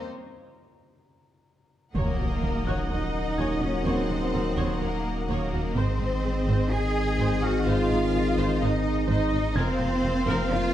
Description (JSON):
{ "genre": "cinematic, hybrid orchestral and electronic film score", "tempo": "126 BPM", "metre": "4/4", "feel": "straight", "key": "unclear", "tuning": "A4 = 437 Hz", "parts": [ { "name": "warm symphonic violin section", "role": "melody", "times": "0.0-10.7 s", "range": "Eb5 to Gb5", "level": "-38 LUFS", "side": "left 3 dB", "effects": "none" }, { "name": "rich symphonic cello section", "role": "bass", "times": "0.0-10.7 s", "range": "Bb3 to Ab4", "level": "-30 LUFS", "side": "right 2 dB", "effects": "none" }, { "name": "dark baby grand piano", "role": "texture", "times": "0.0-10.7 s", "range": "Gb5 to Ab6", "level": "-41 LUFS", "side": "left 1 dB", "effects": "none" }, { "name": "rich symphonic viola section", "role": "accompaniment", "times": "1.9-10.7 s", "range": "C4 to Eb5", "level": "-36 LUFS", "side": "equal", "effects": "none" }, { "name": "dark trombone section", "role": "sustained chords", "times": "1.9-10.7 s", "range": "Eb3 to Bb3", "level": "-32 LUFS", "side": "right 1 dB", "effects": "none" }, { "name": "mellow French horn section", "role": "sustained chords", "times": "1.9-10.7 s", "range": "Db3 to Bb4", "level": "-32 LUFS", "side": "left 5 dB", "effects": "none" }, { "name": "rich symphonic double bass section", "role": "bass", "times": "1.9-10.6 s", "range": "F1 to Eb2", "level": "-30 LUFS", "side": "right 2 dB", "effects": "none" }, { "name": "impact", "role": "sound effects", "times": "1.9-3.9 s", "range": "none", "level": "-32 LUFS", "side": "equal", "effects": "none" }, { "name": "rich studio violin section", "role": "second line", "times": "2.0-10.7 s", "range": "Bb4 to Ab5", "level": "-35 LUFS", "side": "left 2 dB", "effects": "none" }, { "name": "punchy sub bass", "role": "bass", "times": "2.0-10.7 s", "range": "Eb1 to Ab1", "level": "-31 LUFS", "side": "equal", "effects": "none" } ], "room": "moderate scoring stage reverb, RT60 1.9 s", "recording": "dark, warm production", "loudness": "-23 LUFS", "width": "side -12 dB against mid", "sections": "0.0-1.9 A section; 1.9-10.7 B section", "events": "break 0.0-1.9; impact 1.9-3.9", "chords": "0.0 N.C.; 1.9 Ebm7; 5.8 Ab; 9.6 Fsus4" }